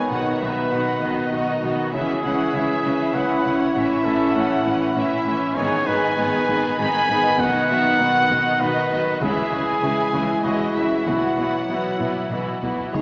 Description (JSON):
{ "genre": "cinematic, epic orchestral film score", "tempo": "99 BPM", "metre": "3/4", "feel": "straight", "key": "unclear", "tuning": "A4 = 441 Hz", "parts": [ { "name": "warm symphonic violin section", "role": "melody", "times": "0.0-13.0 s", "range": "D#5 to B5", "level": "-28 LUFS", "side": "equal", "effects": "none" }, { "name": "warm symphonic violin section", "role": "second line", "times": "0.0-13.0 s", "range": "C#4 to C#5", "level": "-27 LUFS", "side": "equal", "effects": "none" }, { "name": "rich symphonic viola section", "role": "accompaniment", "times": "0.0-13.0 s", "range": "D#3 to G#4", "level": "-27 LUFS", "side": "equal", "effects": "none" }, { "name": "mellow French horn section", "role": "sustained chords", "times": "0.0-13.0 s", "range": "D#3 to E4", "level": "-25 LUFS", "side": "equal", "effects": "none" }, { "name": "clear trumpet", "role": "stabs", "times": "0.0-12.6 s", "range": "E4 to G#5", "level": "-23 LUFS", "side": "equal", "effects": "none" }, { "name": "rich studio double bass section", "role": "bass", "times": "0.1-13.0 s", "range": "G#1 to C#2", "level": "-33 LUFS", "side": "equal", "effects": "none" }, { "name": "rich symphonic cello section", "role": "bass", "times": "0.1-13.0 s", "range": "G#2 to D#3", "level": "-31 LUFS", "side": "equal", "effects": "none" }, { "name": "taiko ensemble", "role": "drums", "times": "1.9-13.0 s", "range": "none", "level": "-34 LUFS", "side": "equal", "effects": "none" } ], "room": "wet scoring stage reverb, RT60 2.0 s", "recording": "heard from further back in the room, small speaker sound", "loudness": "-18 LUFS", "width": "side -28 dB against mid", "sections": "0.0-12.9 A section", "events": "drum fill 12.0-12.9", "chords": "0.1 B; 1.9 C#m; 3.8 A; 5.6 G#m; 7.4 B; 9.2 C#m; 11.1 Bsus4", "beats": "| 0.10 0.72 1.32 | 1.93 2.54 3.15 | 3.75 4.36 4.96 | 5.56 6.17 6.79 | 7.40 8.00 8.61 | 9.22 9.83 10.44 | 11.06 11.69 12.31 | 12.94" }